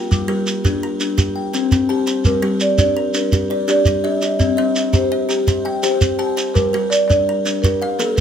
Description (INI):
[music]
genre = southern african traditional, mbira-style interlocking cycle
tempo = 112 BPM (dotted quarters)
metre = 12/8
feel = straight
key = G equiheptatonic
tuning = A4 = 440 Hz
[part]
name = buzzing kalimba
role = arpeggios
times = 0.0-8.2 s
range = G3 to A5-29c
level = -20 LUFS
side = left 6 dB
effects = slapback echo
[part]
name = kalimba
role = arpeggios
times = 0.0-8.2 s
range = G3 to G5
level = -24 LUFS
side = right 4 dB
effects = none
[part]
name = shekere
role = percussion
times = 0.1-8.2 s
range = none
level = -18 LUFS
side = right 2 dB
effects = none
[part]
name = marimba with soft mallets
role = melody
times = 2.3-8.2 s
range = A4-29c to E5-43c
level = -19 LUFS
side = right 2 dB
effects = none
[sound]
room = moderate studio ambience, RT60 0.5 s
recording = close, detailed microphones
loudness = -15 LUFS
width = side -8 dB against mid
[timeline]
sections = 0.0-8.2 A section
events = none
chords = 0.1 Gm; 1.2 C5; 2.3 Gm; 4.4 C; 6.6 Gm; 7.6 Bb5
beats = | 0.11 0.65 1.18 1.72 | 2.25 2.79 3.32 3.86 | 4.40 4.94 5.47 6.01 | 6.55 7.09 7.63 8.17